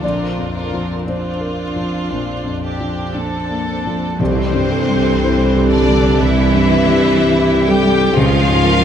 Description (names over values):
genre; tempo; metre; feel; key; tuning
cinematic, emotional film score for orchestra; 57-62 BPM; 4/4; rubato; unclear; A4 = 440 Hz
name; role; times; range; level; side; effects
rich studio violin section; second line; 0.0-8.8 s; C4 to Bb4; -22 LUFS; equal; none
rich studio viola section; accompaniment; 0.0-8.8 s; E3 to D4; -25 LUFS; right 3 dB; none
warm concert grand piano; accompaniment; 0.0-8.8 s; Bb1 to D5; -18 LUFS; left 2 dB; none
rich studio cello section; bass; 0.0-8.8 s; Bb2 to G3; -22 LUFS; right 4 dB; none
warm studio violin section; melody; 4.2-8.8 s; C5 to G5; -21 LUFS; left 5 dB; none
mellow clarinet; second line; 4.2-8.8 s; G4 to Bb4; -22 LUFS; left 3 dB; none
mellow French horn section; sustained chords; 4.2-8.8 s; E3 to Db4; -19 LUFS; right 1 dB; none
rich studio double bass section; bass; 4.2-8.8 s; C2 to Db2; -20 LUFS; right 4 dB; none
timpani; percussion; 4.2-5.7 s; C3; -25 LUFS; right 1 dB; none
room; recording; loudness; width
moderate concert hall reverb, RT60 2.4 s; none; -13 LUFS; side -8 dB against mid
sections
0.0-4.2 A section; 4.2-8.8 A section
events
none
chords
0.0 Bbadd9; 4.2 C; 8.2 Db